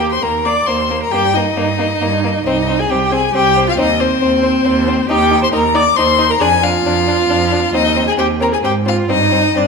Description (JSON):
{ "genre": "quick classical-period movement for string quartet", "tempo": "135 BPM", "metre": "3/4", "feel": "straight", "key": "unclear", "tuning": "A4 = 441 Hz", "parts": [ { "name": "rich violin", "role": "melody", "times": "0.0-9.7 s", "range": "C5 to D6", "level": "-16 LUFS", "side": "left 8 dB", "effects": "none" }, { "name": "warm violin", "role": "second line", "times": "0.0-9.6 s", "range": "Bb3 to Eb4", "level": "-21 LUFS", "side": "left 3 dB", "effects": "none" }, { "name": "warm viola", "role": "accompaniment", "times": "0.0-9.7 s", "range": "C4 to D5", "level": "-17 LUFS", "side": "right 3 dB", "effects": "none" }, { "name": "warm cello", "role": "bass", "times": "0.0-9.7 s", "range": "C2 to Ab2", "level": "-19 LUFS", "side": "right 5 dB", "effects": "none" } ], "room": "moderate scoring stage reverb, RT60 1.5 s", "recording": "minimal, uncompressed stereo recording", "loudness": "-12 LUFS", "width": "side -4 dB against mid", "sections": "0.0-9.7 A section", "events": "none", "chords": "0.0 Eb5; 1.1 Eb/G; 2.5 Cm; 3.8 Cm/Eb; 5.1 Eb6; 6.4 F5; 7.7 Cm/Eb; 8.6 Fm/Ab; 9.1 Gsus4" }